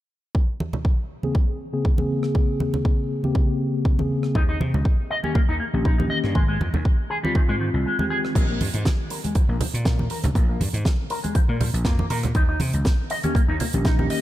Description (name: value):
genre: nu-disco, nu disco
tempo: 120 BPM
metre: 4/4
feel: swing 54% on 16ths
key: Bb dorian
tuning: A4 = 440 Hz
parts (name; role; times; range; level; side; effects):
- electronic kick drum; drums; 0.3-14.0 s; none; -20 LUFS; equal; none
- congas; percussion; 0.6-14.1 s; none; -30 LUFS; right 1 dB; none
- mellow tine electric piano; accompaniment; 1.2-8.3, 13.2-14.2 s; Db3 to Ab4; -26 LUFS; left 1 dB; medium stereo tremolo, sidechain pumping, low-pass filter, diffuse ambient delay
- damped 70s drum kit; drums; 2.2-14.2 s; crash cymbal, hi-hat, rim click, snare drum; -30 LUFS; right 2 dB; none
- electric guitar with an envelope filter; riff; 4.4-14.2 s; Eb3 to Eb5; -28 LUFS; left 1 dB; lush chorus, low-pass filter, diffuse ambient delay
- vintage slap bass; bass; 4.4-14.1 s; Ab1 to C3; -25 LUFS; equal; none
room: light reverb, small room ambience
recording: none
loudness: -20 LUFS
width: side -14 dB against mid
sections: 0.4-8.4 A section; 8.4-14.2 B section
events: filter sweep on tine electric piano 0.4-8.4; break 7.9-8.4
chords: 0.4 Bbm9; 4.4 Eb7; 6.4 Abmaj7; 8.4 N.C.; 12.4 Eb7